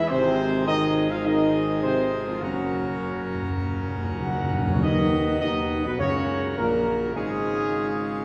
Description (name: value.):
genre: classical.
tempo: 103 BPM.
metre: 4/4.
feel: straight.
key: F# major.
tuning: A4 = 440 Hz.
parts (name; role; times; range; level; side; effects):
dark trumpet section; melody; 0.0-8.2 s; E#4 to F#5; -32 LUFS; equal; none.
dark trombone section; sustained chords; 0.0-8.2 s; E#2 to E#3; -30 LUFS; equal; none.
pipe organ, full organ; sustained chords; 0.0-8.2 s; B2 to C#5; -33 LUFS; equal; none.
dark French horn section; sustained chords; 0.1-8.2 s; E#3 to E#4; -31 LUFS; equal; none.
dark tuba; bass; 0.1-8.2 s; F#1 to D#2; -33 LUFS; equal; none.
timpani; percussion; 2.4-6.8 s; F#2; -31 LUFS; equal; none.
room: wet scoring stage reverb, RT60 1.7 s.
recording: none.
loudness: -24 LUFS.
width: mono.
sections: 0.0-4.8 A section; 4.8-8.2 B section.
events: timpani fill 2.4-4.8.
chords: 0.1 G#; 2.4 F#; 4.8 B/D#; 6.0 F#/C#; 7.2 C#/G#.